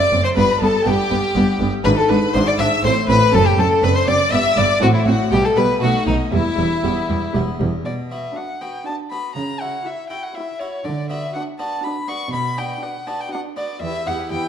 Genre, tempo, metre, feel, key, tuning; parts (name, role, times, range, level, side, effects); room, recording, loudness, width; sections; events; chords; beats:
classical, baroque-style concerto movement with solo episodes; 121 BPM; 3/4; straight; E minor, B minor from 7.9 s; A4 = 441 Hz
rich chamber violin section; melody; 0.0-14.5 s; B4 to E6; -26 LUFS; left 4 dB
rich violin; melody; 0.0-14.5 s; D#4 to C#6; -21 LUFS; left 2 dB
rich chamber violin section; second line; 0.0-14.5 s; D#4 to E5; -24 LUFS; left 3 dB
harpsichord; accompaniment; 0.0-14.5 s; E2 to A4; -27 LUFS; equal
warm chamber viola section; accompaniment; 0.1-14.5 s; G3 to E4; -25 LUFS; right 2 dB
rich chamber double bass section; bass; 0.1-7.7 s; E1 to B1; -22 LUFS; right 3 dB
warm chamber cello section; bass; 0.1-14.4 s; E2 to D3; -23 LUFS; right 2 dB
wet recital hall reverb, RT60 1.4 s; dark, warm production; -16 LUFS; side -8 dB against mid
0.0-7.9 A section; 7.9-14.5 B section
0.4 G; 1.8 E7/G#; 2.8 Am; 3.3 D7/F#; 4.3 G; 4.8 Am; 5.3 Em/B; 5.8 B7; 6.3 Em; 7.9 Bm; 9.4 F#5/C#; 10.8 Bm/D; 12.3 Bm; 13.8 Em
| 0.37 0.86 1.35 | 1.85 2.34 2.84 | 3.33 3.83 4.32 | 4.81 5.31 5.82 | 6.33 6.84 7.35 | 7.86 8.36 8.86 | 9.36 9.85 10.35 | 10.85 11.34 11.84 | 12.33 12.82 13.32 | 13.82 14.31